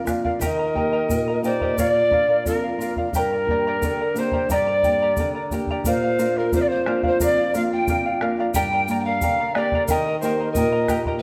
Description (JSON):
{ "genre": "andean folk, Andean ensemble", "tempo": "89 BPM", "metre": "2/4", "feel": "straight", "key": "unclear", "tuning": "A4 = 440 Hz", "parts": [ { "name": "polished pan flute", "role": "melody", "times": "0.0-11.2 s", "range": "Bb4 to G5", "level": "-25 LUFS", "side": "equal", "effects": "none" }, { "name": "bright reedy quena", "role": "second line", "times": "0.0-11.2 s", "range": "Bb4 to G5", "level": "-30 LUFS", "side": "equal", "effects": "none" }, { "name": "charango", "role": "accompaniment", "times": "0.0-11.2 s", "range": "G4 to Bb5", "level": "-30 LUFS", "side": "equal", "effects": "none" }, { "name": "flamenco guitar", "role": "accompaniment", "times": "0.0-11.2 s", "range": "F2 to G4", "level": "-28 LUFS", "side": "equal", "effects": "none" }, { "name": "bombo", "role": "percussion", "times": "0.1-11.2 s", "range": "none", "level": "-32 LUFS", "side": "equal", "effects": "none" }, { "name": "egg shaker", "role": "percussion", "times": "0.1-11.0 s", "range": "none", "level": "-38 LUFS", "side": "equal", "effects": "none" } ], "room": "moderate recital hall reverb, RT60 1.7 s", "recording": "none", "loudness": "-21 LUFS", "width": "mono", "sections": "0.0-5.9 A section; 5.9-11.2 B section", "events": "none", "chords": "0.4 Eb; 1.8 Bb; 3.2 Gm; 5.9 Bb; 8.5 Gm; 9.9 Eb" }